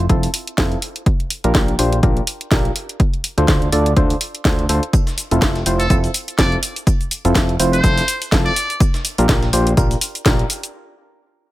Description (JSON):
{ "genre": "piano house", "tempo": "124 BPM", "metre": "4/4", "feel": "swing 56% on 16ths", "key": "unclear", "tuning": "A4 = 439 Hz", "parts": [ { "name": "percussive organ stab", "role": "riff", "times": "0.0-10.5 s", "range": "C4 to D5", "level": "-21 LUFS", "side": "equal", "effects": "chorus, sidechain pumping, digital delay" }, { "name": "fat analog bass", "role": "bass", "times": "0.0-10.4 s", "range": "F1 to D2", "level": "-19 LUFS", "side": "equal", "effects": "tube saturation, sidechain pumping" }, { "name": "electronic kick drum", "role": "drums", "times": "0.1-10.4 s", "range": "none", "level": "-17 LUFS", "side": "equal", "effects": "overdrive" }, { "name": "house drum kit", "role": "drums", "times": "0.1-10.7 s", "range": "cabasa, hi-hat, snare drum", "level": "-22 LUFS", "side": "equal", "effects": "none" }, { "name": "breakbeat sampler-style drum kit", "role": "drums", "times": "4.9-10.6 s", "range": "hi-hat, snare drum, tambourine", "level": "-31 LUFS", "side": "equal", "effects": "none" }, { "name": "trumpet with metal mute", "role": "melody", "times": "5.8-8.8 s", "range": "A4 to D5", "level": "-22 LUFS", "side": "equal", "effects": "digital delay" } ], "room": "little or no reverb", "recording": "none", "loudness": "-15 LUFS", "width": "side -16 dB against mid", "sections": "0.0-11.5 A section", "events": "break 10.7-11.5", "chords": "0.0 Fmaj7; 1.1 Bb6; 3.0 Dm7; 4.9 Fmaj7; 8.8 Bb6; 10.7 N.C.", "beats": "0.10 0.58 | 1.06 1.55 2.03 2.52 | 3.00 3.48 3.97 4.45 | 4.93 5.42 5.90 6.39 | 6.87 7.35 7.84 8.32 | 8.80 9.29 9.77 10.26" }